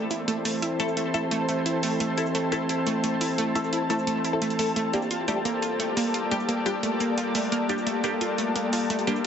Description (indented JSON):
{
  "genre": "dark technical drum and bass",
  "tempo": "174 BPM",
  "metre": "4/4",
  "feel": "straight",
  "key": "A phrygian",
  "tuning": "A4 = 443 Hz",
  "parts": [
    { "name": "metallic inharmonic drone", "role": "sustained chords", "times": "0.0-9.3 s", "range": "E3 to A4", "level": "-29 LUFS", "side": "left 1 dB", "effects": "chorus, built-in reverb" },
    { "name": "ethereal airy pad", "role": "texture", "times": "0.0-9.3 s", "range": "Bb3 to A5", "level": "-30 LUFS", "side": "left 2 dB", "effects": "ensemble chorus, built-in reverb" },
    { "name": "wide unison pluck", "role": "arpeggios", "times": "0.1-9.3 s", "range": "A3 to F4", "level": "-29 LUFS", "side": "right 2 dB", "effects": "tape echo" },
    { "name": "electronic hi-hat and shaker", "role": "drums", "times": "0.1-9.3 s", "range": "none", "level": "-33 LUFS", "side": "right 1 dB", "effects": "overdrive" },
    { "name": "filtered dub chord stab", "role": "stabs", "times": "0.8-9.2 s", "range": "G3 to A4", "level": "-32 LUFS", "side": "left 1 dB", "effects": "phaser, lush chorus, tape echo" }
  ],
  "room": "moderate plate reverb, RT60 1.6 s, digital ambience",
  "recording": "heavily compressed radio sound, multiband compression, nothing above 7.9 kHz",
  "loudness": "-24 LUFS",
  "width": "side -8 dB against mid",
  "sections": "0.0-9.3 A section",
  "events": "none",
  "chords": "0.0 Am; 4.8 Gmadd9",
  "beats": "0.28 | 0.62 0.97 1.31 1.66 | 2.00 2.35 2.69 3.04 | 3.38 3.73 4.07 4.42 | 4.76 5.11 5.45 5.80 | 6.14 6.49 6.83 7.18 | 7.52 7.87 8.21 8.56 | 8.90 9.24"
}